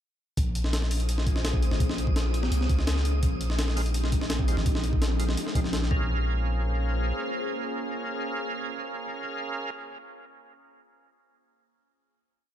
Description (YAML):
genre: drum and bass, jungle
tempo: 168 BPM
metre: 4/4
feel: straight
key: Bb dorian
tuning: A4 = 439 Hz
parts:
  - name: ethereal airy pad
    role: sustained chords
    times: 0.9-9.7 s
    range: F3 to C5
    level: -35 LUFS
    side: left 1 dB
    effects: ensemble chorus, built-in reverb, vintage 12-bit sampler grit
  - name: long sustained 808-style bass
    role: bass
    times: 0.4-7.1 s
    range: Ab1 to Db2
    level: -27 LUFS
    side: equal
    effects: none
  - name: breakbeat sampler-style drum kit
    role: drums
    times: 0.4-6.0 s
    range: hi-hat, kick drum, snare drum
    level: -27 LUFS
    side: equal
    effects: none
  - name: wind-like tuned noise texture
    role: texture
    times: 0.9-6.1 s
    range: Eb6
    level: -44 LUFS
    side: right 2 dB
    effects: built-in reverb
  - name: overdriven tonewheel organ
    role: stabs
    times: 3.8-9.7 s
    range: Ab3 to F5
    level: -33 LUFS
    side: right 2 dB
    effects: chorus vibrato, slow rotary speaker, dub echo
room: little or no reverb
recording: none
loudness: -25 LUFS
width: side -11 dB against mid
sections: 0.4-6.1 drop; 6.1-8.9 final hit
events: drop 0.4-6.1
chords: 0.4 Bbm7; 3.2 Fm7/Bb; 5.9 Bbm7